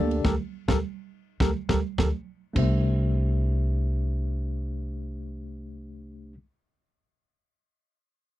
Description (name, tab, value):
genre	electric jazz fusion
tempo	104 BPM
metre	4/4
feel	straight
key	C major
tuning	A4 = 440 Hz
part	tine electric piano	accompaniment	0.0-6.3 s	A3 to E5	-32 LUFS	left 4 dB	medium stereo tremolo
part	upright bass	bass	0.0-6.3 s	C2 to D2	-26 LUFS	equal	none
part	tight funk drum kit	drums	0.1-2.7 s	crash cymbal, kick drum, ride cymbal, snare drum	-26 LUFS	equal	none
part	congas	percussion	0.3-2.8 s	none	-32 LUFS	right 12 dB	none
room	little or no reverb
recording	dry, close 1970s-style studio recording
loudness	-24 LUFS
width	side -14 dB against mid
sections	0.0-2.6 A section; 2.6-4.9 B section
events	band accent 0.2-2.6; drum fill 1.4-2.6; tine electric piano fill 1.4-2.6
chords	0.0 Gmadd9/D; 2.6 C